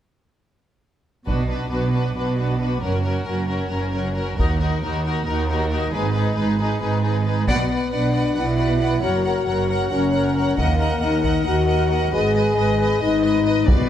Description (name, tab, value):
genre	cinematic, epic orchestral film score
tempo	271 BPM (eighths)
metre	7/8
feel	straight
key	unclear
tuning	A4 = 443 Hz
part	warm symphonic violin section	melody	1.3-13.9 s	A#4 to F#5	-28 LUFS	left 2 dB	none
part	dark chamber violin section	second line	1.3-13.9 s	F#4 to D#5	-30 LUFS	left 2 dB	none
part	warm symphonic viola section	accompaniment	1.3-13.9 s	C#4 to B4	-28 LUFS	equal	none
part	warm symphonic cello section	bass	1.3-13.9 s	D#2 to B2	-25 LUFS	right 2 dB	none
part	warm symphonic double bass section	bass	1.3-13.9 s	F#1 to D#2	-25 LUFS	right 3 dB	none
part	taiko ensemble	drums	1.3-13.9 s	none	-22 LUFS	equal	none
part	warm French horn section	sustained chords	7.5-13.9 s	A#3 to G#4	-21 LUFS	left 4 dB	none
room	moderate scoring stage reverb, RT60 1.8 s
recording	none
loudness	-18 LUFS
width	side -10 dB against mid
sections	1.3-7.5 A section; 7.5-13.9 B section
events	band accent 7.5-7.9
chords	1.3 Bm; 2.8 F#; 4.4 D#m; 5.9 G#m; 7.5 Bm; 9.0 F#; 10.6 D#m; 12.1 G#m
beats	| 1.28 1.50 1.72 1.94 2.17 2.39 2.61 | 2.83 3.05 3.27 3.49 3.72 3.94 4.16 | 4.38 4.60 4.82 5.04 5.27 5.49 5.71 | 5.93 6.15 6.37 6.59 6.82 7.04 7.26 | 7.48 7.70 7.92 8.14 8.36 8.59 8.81 | 9.03 9.25 9.47 9.69 9.91 10.13 10.36 | 10.58 10.80 11.02 11.24 11.46 11.68 11.90 | 12.13 12.35 12.57 12.79 13.01 13.23 13.45 | 13.68